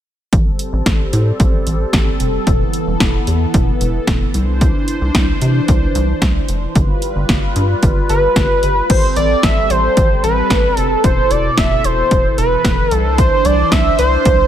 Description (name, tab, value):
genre	synth-pop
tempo	112 BPM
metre	4/4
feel	straight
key	A minor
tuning	A4 = 437 Hz
part	phased analog pad	sustained chords	0.3-14.5 s	B2 to C5	-21 LUFS	equal	phaser, chorus
part	rubbery square bass	bass	0.3-14.4 s	E1 to C3	-18 LUFS	equal	none
part	punchy analog drum machine	drums	0.3-14.4 s	crash cymbal, hi-hat, kick drum, snare drum	-16 LUFS	equal	overdrive
part	octave-doubled lead	melody	8.1-14.5 s	B4 to E5	-14 LUFS	equal	chorus
room	light reverb, digital ambience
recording	none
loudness	-12 LUFS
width	side -10 dB against mid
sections	0.3-8.9 A section; 8.9-14.5 B section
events	none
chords	0.3 Am7; 2.5 Esus4; 4.3 Cadd9; 6.8 G7; 8.9 Am7; 11.0 Esus4; 12.9 Cadd9